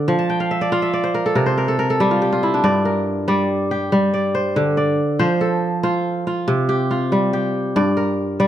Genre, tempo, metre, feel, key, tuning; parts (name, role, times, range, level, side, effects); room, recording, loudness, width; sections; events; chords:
west african traditional; 94 BPM (dotted quarters); 12/8; straight; G dorian; A4 = 440 Hz
kora; solo; 0.0-8.5 s; G2 to A5; -16 LUFS; equal
light reverb; close, detailed microphones; -17 LUFS; side -11 dB against mid
0.0-8.5 A section
kora fill 0.2-2.6
0.1 Fmaj13; 1.4 C5; 2.6 Gm; 5.2 F; 6.5 C5; 7.8 Gm